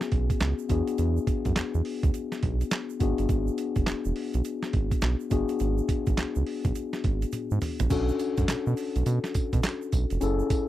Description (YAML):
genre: R&B, new jack swing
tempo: 104 BPM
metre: 4/4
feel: swing 63% on 16ths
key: unclear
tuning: A4 = 438 Hz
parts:
  - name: mellow tine electric piano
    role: accompaniment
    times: 0.0-10.7 s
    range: B3 to A4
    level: -30 LUFS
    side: left 5 dB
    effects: none
  - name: boom bap sampler-style drum kit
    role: drums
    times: 0.0-10.7 s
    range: crash cymbal, handclaps, hi-hat, kick drum, snare drum, tambourine, toms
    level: -28 LUFS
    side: right 2 dB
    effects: none
  - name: tube shaker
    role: percussion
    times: 0.0-10.7 s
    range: none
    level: -49 LUFS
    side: right 20 dB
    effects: none
  - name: round analog bass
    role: bass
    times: 0.1-10.4 s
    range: E1 to B2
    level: -27 LUFS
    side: right 1 dB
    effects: none
room: little or no reverb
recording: dry, close 1970s-style studio recording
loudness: -25 LUFS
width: side -14 dB against mid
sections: 0.0-7.9 A section; 7.9-10.7 B section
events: drum fill 7.3-7.9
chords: 0.0 C#7sus4; 0.7 E9; 3.0 G#m7b5; 7.9 Bm9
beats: 0.41 | 0.98 1.56 2.14 2.71 | 3.29 3.87 4.45 5.02 | 5.60 6.18 6.75 7.33 | 7.91 8.48 9.06 9.64 | 10.21